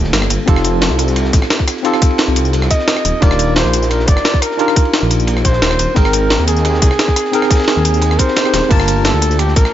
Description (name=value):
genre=liquid drum and bass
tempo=175 BPM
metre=4/4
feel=straight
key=unclear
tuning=A4 = 439 Hz
part: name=mellow tine electric piano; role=accompaniment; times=0.0-9.7 s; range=Bb3 to A5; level=-18 LUFS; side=equal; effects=medium stereo tremolo, ping-pong delay
part: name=swelling detuned saw bass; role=bass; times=0.0-9.6 s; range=D1 to Eb2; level=-16 LUFS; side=equal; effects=tube saturation
part: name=crunchy breakbeat drum kit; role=drums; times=0.0-9.7 s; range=ride cymbal, snare drum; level=-26 LUFS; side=equal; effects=high-pass filter on cymbals, high-pass filter on snare, high-pass filter on room
part: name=jungle sampler-style drum kit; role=drums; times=0.1-9.7 s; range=crash cymbal, hi-hat, rim click, snare drum, tambourine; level=-18 LUFS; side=equal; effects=none
part: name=electronic kick drum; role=drums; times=0.5-9.6 s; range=none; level=-13 LUFS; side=equal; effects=overdrive
part: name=breathy flugelhorn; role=melody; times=2.7-9.7 s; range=G4 to Eb5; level=-18 LUFS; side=equal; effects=ping-pong delay
room=little or no reverb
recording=nothing above 7.6 kHz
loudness=-11 LUFS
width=side -12 dB against mid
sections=0.0-9.7 A section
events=drum fill 8.5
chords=0.5 F7; 3.2 Ebmaj9; 6.0 Abmaj7; 8.7 Gm9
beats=0.13 | 0.48 0.82 1.16 1.50 | 1.85 2.19 2.53 2.88 | 3.22 3.56 3.90 4.25 | 4.59 4.93 5.28 5.62 | 5.96 6.30 6.65 6.99 | 7.33 7.68 8.02 8.36 | 8.71 9.05 9.39 9.73